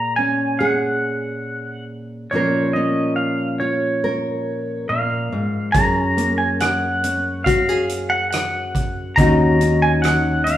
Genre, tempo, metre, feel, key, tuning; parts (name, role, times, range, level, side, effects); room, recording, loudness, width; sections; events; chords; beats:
acoustic folk-pop ballad; 70 BPM; 4/4; straight; F# major; A4 = 439 Hz
pedal steel guitar; melody; 0.0-10.6 s; C#5 to A#5; -21 LUFS; equal
nylon-string guitar; accompaniment; 0.0-10.6 s; F#2 to A#4; -21 LUFS; left 1 dB
fretless electric bass; bass; 5.7-10.6 s; D#2 to F#2; -24 LUFS; right 1 dB
natural country drum kit; drums; 5.7-10.6 s; hi-hat, kick drum, rim click; -22 LUFS; right 1 dB
wet stone room reverb, RT60 1.3 s; band playing live in one room, studio reverb; -17 LUFS; side -12 dB against mid
0.0-10.6 A section
0.0 F#add9/A#; 2.3 A#m; 5.7 F#add9; 9.2 D#m7
0.60 1.45 | 2.31 3.17 4.03 4.88 | 5.74 6.60 7.46 8.32 | 9.18 10.04